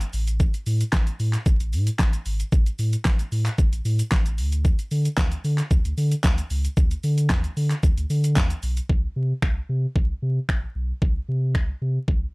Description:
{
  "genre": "dance-pop",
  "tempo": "113 BPM",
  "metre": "4/4",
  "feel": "straight",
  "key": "unclear",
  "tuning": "A4 = 440 Hz",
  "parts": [
    { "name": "warm sub bass", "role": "bass", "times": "0.0-12.3 s", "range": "Ab1 to D3", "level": "-23 LUFS", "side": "equal", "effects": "transformer saturation, sidechain pumping" },
    { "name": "pop drum kit", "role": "drums", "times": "0.0-12.2 s", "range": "finger snaps, handclaps, hi-hat, kick drum, shaker, snare drum", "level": "-22 LUFS", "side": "equal", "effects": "overdrive" }
  ],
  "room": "little or no reverb",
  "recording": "dry, gritty hardware recording, vinyl crackle",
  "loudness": "-20 LUFS",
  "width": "side -29 dB against mid",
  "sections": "0.0-8.9 A section; 8.9-12.3 B section",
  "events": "drop 0.0-8.9",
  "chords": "none",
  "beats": "| 0.40 0.93 1.46 1.99 | 2.52 3.05 3.58 4.12 | 4.65 5.18 5.71 6.24 | 6.77 7.30 7.83 8.36 | 8.89 9.43 9.96 10.49 | 11.02 11.55 12.08"
}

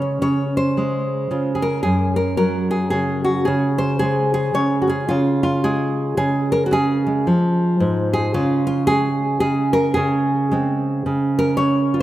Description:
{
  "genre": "folk, solo fingerstyle acoustic guitar",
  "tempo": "111 BPM",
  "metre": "3/4",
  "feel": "swing 61% on 8ths",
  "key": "Db major",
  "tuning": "A4 = 441 Hz",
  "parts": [
    { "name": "nylon-string guitar", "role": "solo", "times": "0.0-12.0 s", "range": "Gb2 to Db5", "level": "-17 LUFS", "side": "equal", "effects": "none" }
  ],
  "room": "moderate lush hall reverb, RT60 2.4 s",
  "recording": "rough home demo mix",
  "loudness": "-17 LUFS",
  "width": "side -14 dB against mid",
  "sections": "0.0-5.1 A section; 5.1-12.0 B section",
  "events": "none",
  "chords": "0.0 Dbmaj7; 1.8 Gb5; 3.5 Db5; 5.1 Db; 8.3 Ab/Db",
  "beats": "| 0.21 0.76 1.30 | 1.85 2.39 2.93 | 3.48 4.02 4.56 | 5.10 5.64 6.18 | 6.72 7.26 7.80 | 8.34 8.88 9.42 | 9.96 10.50 11.04 | 11.58"
}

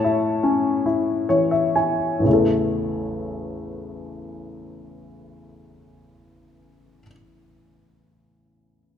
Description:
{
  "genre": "classical, lyrical solo piano",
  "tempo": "38-52 BPM (dotted quarters)",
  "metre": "6/8",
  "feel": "rubato",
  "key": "A major",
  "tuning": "A4 = 440 Hz",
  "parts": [
    { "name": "warm upright piano", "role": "solo", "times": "0.0-9.0 s", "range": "A1 to A5", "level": "-20 LUFS", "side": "left 2 dB", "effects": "none" }
  ],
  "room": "moderate scoring stage reverb, RT60 2.0 s",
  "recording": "minimal, uncompressed stereo recording, faint mains hum",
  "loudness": "-19 LUFS",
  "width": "side -8 dB against mid",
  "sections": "0.0-2.3 A section; 2.3-8.4 B section",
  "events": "slowing down 0.0-2.3; upright piano fill 0.9-2.3",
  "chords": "0.0 A",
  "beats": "0.85 | 2.26 3.79 | 5.32 6.87"
}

